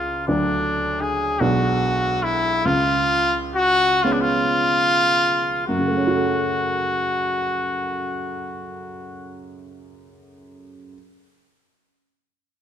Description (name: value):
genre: classical, romantic duo for trumpet and grand piano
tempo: 33-55 BPM (dotted quarters)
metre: 6/8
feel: rubato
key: F# minor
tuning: A4 = 440 Hz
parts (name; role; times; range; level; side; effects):
- warm trumpet; melody; 0.0-9.5 s; D4 to G#4; -20 LUFS; left 1 dB; none
- warm baby grand piano; accompaniment; 0.0-11.0 s; B1 to A4; -24 LUFS; right 2 dB; none
room: light reverb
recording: close, detailed microphones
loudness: -18 LUFS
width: side -9 dB against mid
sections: 0.0-5.7 A section; 5.7-8.7 B section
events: slowing down 0.0-5.7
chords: 0.3 D; 1.4 G#m7b5/B; 2.7 C#7; 5.7 F#m